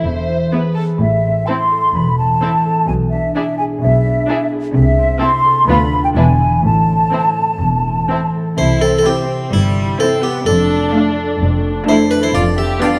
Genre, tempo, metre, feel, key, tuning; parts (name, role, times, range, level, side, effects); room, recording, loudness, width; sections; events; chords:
cinematic, playful, whimsical film cue; 128 BPM; 4/4; straight; A minor, C major from 8.6 s; A4 = 440 Hz
muted studio violin section; melody; 0.0-13.0 s; G#4 to G5; -29 LUFS; equal
large flute ensemble; second line; 0.0-8.3 s; E5 to C6; -18 LUFS; equal
concert harp; arpeggios; 0.0-13.0 s; F2 to E5; -22 LUFS; equal
muted studio cello section; bass; 0.0-12.7 s; D2 to C3; -22 LUFS; equal
muted studio double bass section; bass; 0.0-12.7 s; E1 to D2; -22 LUFS; equal
muted studio violin section; second line; 0.5-13.0 s; G3 to G4; -24 LUFS; equal
muted studio viola section; accompaniment; 0.5-13.0 s; A3 to E4; -23 LUFS; equal
harpsichord; melody; 8.6-13.0 s; E4 to E5; -20 LUFS; equal
dark French horn section; sustained chords; 9.1-13.0 s; G3 to E4; -27 LUFS; equal
moderate scoring stage reverb, RT60 1.8 s; -15 LUFS; mono
0.0-8.6 A section; 8.6-13.0 B section
0.0 E; 1.0 Am; 2.9 E7/B; 4.7 Am/C; 5.7 Bdim/D; 6.2 E; 6.6 Am; 8.6 C; 10.5 Dm/F; 12.3 G7/F